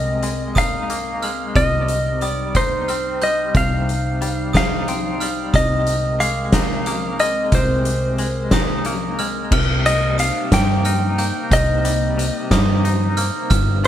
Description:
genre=post-rock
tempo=60 BPM (dotted quarters)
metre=6/8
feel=straight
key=C minor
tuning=A4 = 436 Hz
part: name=clean lap steel guitar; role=melody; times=0.0-13.9 s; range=C5 to G5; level=-22 LUFS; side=left 1 dB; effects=digital delay
part: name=warbly tape-like pad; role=sustained chords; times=0.0-13.9 s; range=G3 to C5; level=-29 LUFS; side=equal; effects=chorus, built-in reverb
part: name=twangy electric guitar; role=arpeggios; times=0.0-13.9 s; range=G2 to Eb4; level=-27 LUFS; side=left 3 dB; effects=tremolo, digital delay
part: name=hollow-body short-scale picked electric bass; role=bass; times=0.0-13.9 s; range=G1 to G2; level=-22 LUFS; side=equal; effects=none
part: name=oversized low-tuned drum kit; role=drums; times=0.2-13.9 s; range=crash cymbal, hi-hat, kick drum, snare drum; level=-21 LUFS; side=equal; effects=none
part: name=glockenspiel with brass mallets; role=arpeggios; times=0.6-13.9 s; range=D6 to G6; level=-28 LUFS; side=right 7 dB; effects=digital delay
room=light reverb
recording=none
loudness=-16 LUFS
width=side -11 dB against mid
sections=0.0-9.5 A section; 9.5-13.9 B section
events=none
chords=0.0 Abadd9/C; 1.6 Cm; 5.5 Abadd9/C; 9.5 Cm7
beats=0.56 | 1.56 2.55 | 3.55 4.54 | 5.54 6.54 | 7.53 8.53 | 9.53 10.52 | 11.52 12.52 | 13.51

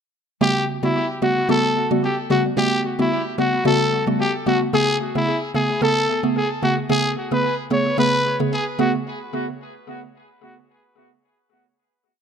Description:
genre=afrobeats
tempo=111 BPM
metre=4/4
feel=swing 55% on 16ths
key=A major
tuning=A4 = 441 Hz
part: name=growling trumpet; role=melody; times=0.4-8.9 s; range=E4 to C#5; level=-21 LUFS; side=left 1 dB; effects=tape echo
part: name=mallet-like synth pluck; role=accompaniment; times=0.4-9.0 s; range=C#3 to A4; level=-20 LUFS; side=right 1 dB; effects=chorus, phaser, tape echo
room=moderate spring reverb, RT60 1.9 s, small room ambience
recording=echo-heavy mix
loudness=-18 LUFS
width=side -7 dB against mid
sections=0.4-9.1 chorus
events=none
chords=0.4 Gmaj9#11; 4.7 Amaj9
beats=| 0.41 0.95 1.49 2.03 | 2.57 3.11 3.65 4.20 | 4.74 5.28 5.82 6.36 | 6.90 7.44 7.98 8.52

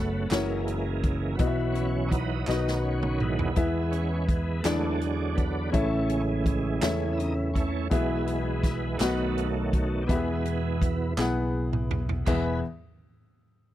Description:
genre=slow gospel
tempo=55 BPM (dotted quarters)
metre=6/8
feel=straight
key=E major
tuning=A4 = 440 Hz
part: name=warm baby grand piano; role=accompaniment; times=0.0-12.6 s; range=E2 to F#5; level=-30 LUFS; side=left 4 dB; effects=none
part: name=bright tonewheel organ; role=sustained chords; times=0.0-12.6 s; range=B2 to B4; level=-30 LUFS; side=right 4 dB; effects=slow rotary speaker, overdrive, chorus vibrato
part: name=dark French horn section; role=sustained chords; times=0.0-12.6 s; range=E3 to C#5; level=-40 LUFS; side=right 2 dB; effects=none
part: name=fingered electric bass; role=bass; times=0.0-12.6 s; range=E1 to E2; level=-30 LUFS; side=equal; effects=none
part: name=swinging big-band drum kit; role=drums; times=0.3-12.4 s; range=crash cymbal, hi-hat, kick drum, snare drum, toms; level=-29 LUFS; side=equal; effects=none
part: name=group handclap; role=percussion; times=0.3-12.6 s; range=none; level=-36 LUFS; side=right 4 dB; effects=none
room=light reverb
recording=dry, close 1970s-style studio recording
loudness=-24 LUFS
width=side -13 dB against mid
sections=0.0-12.3 A section; 12.3-13.7 B section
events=tonewheel organ solo 0.0-12.3; drum fill 2.5-3.6, 11.2-12.3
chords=0.3 F#7; 1.4 Bsus4; 2.5 B; 3.6 E; 4.6 E7; 5.7 A; 7.9 E/B; 9.0 B; 10.1 E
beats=0.31 | 1.39 2.48 | 3.56 4.65 | 5.74 6.83 | 7.91 9.00 | 10.09 11.18 | 12.27

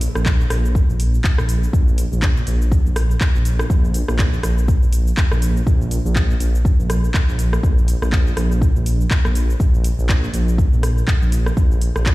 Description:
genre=afro house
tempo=122 BPM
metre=4/4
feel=swing 58% on 16ths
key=unclear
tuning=A4 = 441 Hz
part: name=dark detuned saw bass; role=bass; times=0.0-12.1 s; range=Bb1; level=-18 LUFS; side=equal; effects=sidechain pumping
part: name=afro-pop drum kit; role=drums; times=0.0-12.1 s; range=handclaps, hi-hat, rim click, shaker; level=-26 LUFS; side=equal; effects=overdrive
part: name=electronic kick drum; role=drums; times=0.3-12.1 s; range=none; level=-16 LUFS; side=equal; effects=none
room=digital ambience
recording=played on a big sound system in a bare room, large studio reverb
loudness=-15 LUFS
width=side -19 dB against mid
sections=0.0-12.1 A section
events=none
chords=none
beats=0.26 0.75 1.24 | 1.73 2.23 2.72 3.21 | 3.70 4.19 4.68 5.18 | 5.67 6.16 6.65 7.14 | 7.63 8.13 8.62 9.11 | 9.60 10.09 10.59 11.08 | 11.57 12.06

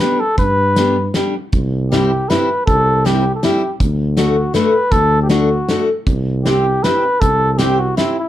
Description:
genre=alpine folk, alpine dance band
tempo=158 BPM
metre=3/4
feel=swing 54% on 8ths, rubato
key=unclear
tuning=A4 = 440 Hz
part: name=warm flugelhorn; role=melody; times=0.0-8.3 s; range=E4 to B4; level=-17 LUFS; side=equal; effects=none
part: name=picked steel-string acoustic guitar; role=accompaniment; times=0.0-8.2 s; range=G3 to G4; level=-17 LUFS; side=left 2 dB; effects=none
part: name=dark tuba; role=bass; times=0.4-8.0 s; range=C2 to G2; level=-18 LUFS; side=equal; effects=none
part: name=loose indie drum kit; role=drums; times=0.4-8.1 s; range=hi-hat, kick drum, snare drum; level=-20 LUFS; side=equal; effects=none
room=moderate small room reverb, RT60 0.5 s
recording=dark, warm production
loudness=-13 LUFS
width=side -12 dB against mid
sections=0.0-8.3 A section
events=none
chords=0.0 G; 1.5 C; 3.8 D; 6.1 C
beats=0.00 | 0.38 0.76 1.14 | 1.53 1.91 2.29 | 2.67 3.05 3.43 | 3.80 4.17 4.54 | 4.92 5.30 5.68 | 6.07 6.45 6.84 | 7.21 7.59 7.97

